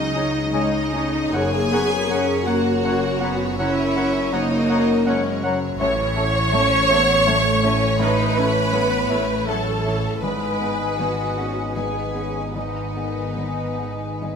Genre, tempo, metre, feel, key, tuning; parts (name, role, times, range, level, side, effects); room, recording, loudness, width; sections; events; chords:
cinematic; 80 BPM; 3/4; uneven beats, rubato; A4 = 439 Hz
warm symphonic violin section; melody; 0.0-14.4 s; B4 to D#5; -30 LUFS; left 2 dB
warm symphonic violin section; second line; 0.0-14.4 s; C#5 to C#6; -29 LUFS; left 2 dB
dark symphonic viola section; accompaniment; 0.0-14.4 s; C#4 to C#5; -23 LUFS; right 2 dB
felt-muted upright piano; accompaniment; 0.0-14.4 s; F#1 to D#5; -29 LUFS; left 3 dB
warm French horn section; sustained chords; 0.0-14.4 s; E3 to A#4; -30 LUFS; left 6 dB
concert harp; arpeggios; 0.0-14.4 s; F#2 to C#5; -31 LUFS; left 10 dB
dark symphonic double bass section; bass; 0.0-14.4 s; F#1 to C#2; -28 LUFS; right 3 dB
warm symphonic cello section; bass; 0.0-14.4 s; E3 to D#4; -26 LUFS; right 2 dB
dark cor anglais; second line; 0.1-14.4 s; D#5 to F#5; -33 LUFS; right 3 dB
mellow flute section; second line; 0.2-14.4 s; G#5 to A#5; -33 LUFS; left 6 dB
warm clarinet; second line; 0.2-14.4 s; B4 to C#5; -33 LUFS; equal
moderate scoring stage reverb, RT60 1.9 s; -18 LUFS; side -6 dB against mid
0.0-14.4 A section
0.0 C#sus2; 1.3 F#; 5.8 A; 10.2 G#m